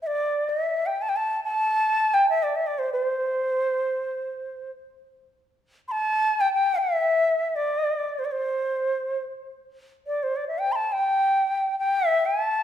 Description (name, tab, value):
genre	indian classical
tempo	free time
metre	none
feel	none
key	C raga bhupali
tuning	A4 = 440 Hz
part	breathy bright bansuri	solo	0.0-12.6 s	C5 to C6	-22 LUFS	equal	none
room	wet recital hall reverb, RT60 1.7 s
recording	minimal, uncompressed stereo recording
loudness	-22 LUFS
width	side -10 dB against mid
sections	0.0-9.6 A section; 9.6-12.6 A section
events	none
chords	none